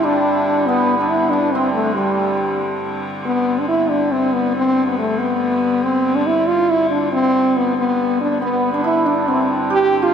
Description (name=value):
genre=medieval dance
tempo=93 BPM (dotted quarters)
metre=6/8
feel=straight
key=G major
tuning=A4 = 439 Hz
part: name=clear French horn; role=melody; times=0.0-10.1 s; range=G3 to G4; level=-16 LUFS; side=left 1 dB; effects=none
part: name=hammered dulcimer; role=second line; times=0.0-10.1 s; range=G3 to G4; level=-22 LUFS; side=right 2 dB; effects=none
part: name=bright hurdy-gurdy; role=drone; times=0.0-10.1 s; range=G2 to D3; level=-26 LUFS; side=equal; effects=none
room=wet cathedral reverb, RT60 4.0 s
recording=recorded in a church or concert hall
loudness=-15 LUFS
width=side -7 dB against mid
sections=0.0-3.3 A section; 3.3-10.1 A section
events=none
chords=none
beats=0.02 | 0.67 1.32 | 1.96 2.61 | 3.26 3.90 | 4.55 5.19 | 5.84 6.48 | 7.13 7.77 | 8.42 9.06 | 9.70